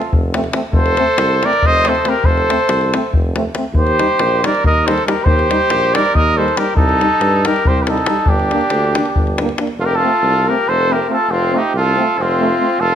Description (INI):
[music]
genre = balkan folk, Balkan brass band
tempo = 278 BPM (eighths)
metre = 7/8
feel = straight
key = unclear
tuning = A4 = 440 Hz
[part]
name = mellow cornet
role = melody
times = 0.0-12.9 s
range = F4 to Eb5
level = -16 LUFS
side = left 1 dB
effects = none
[part]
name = clear trumpet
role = second line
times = 0.0-12.9 s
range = C4 to C5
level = -21 LUFS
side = right 4 dB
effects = none
[part]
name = davul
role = percussion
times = 0.0-9.7 s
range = none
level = -18 LUFS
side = left 1 dB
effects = none
[part]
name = warm tuba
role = bass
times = 0.1-12.9 s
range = F1 to G2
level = -21 LUFS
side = equal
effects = none
[part]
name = clear French horn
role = accompaniment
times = 0.3-12.7 s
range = C4 to Eb4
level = -25 LUFS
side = left 5 dB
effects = none
[part]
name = clear trombone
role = accompaniment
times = 0.3-12.7 s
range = G3 to Bb3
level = -26 LUFS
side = right 5 dB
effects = none
[sound]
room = moderate recital hall reverb, RT60 1.5 s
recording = close, detailed microphones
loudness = -12 LUFS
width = side -9 dB against mid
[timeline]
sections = 0.0-9.8 A section; 9.8-12.9 A section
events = none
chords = 0.0 F; 3.7 Eb; 6.8 Cm; 8.3 Gm; 9.8 F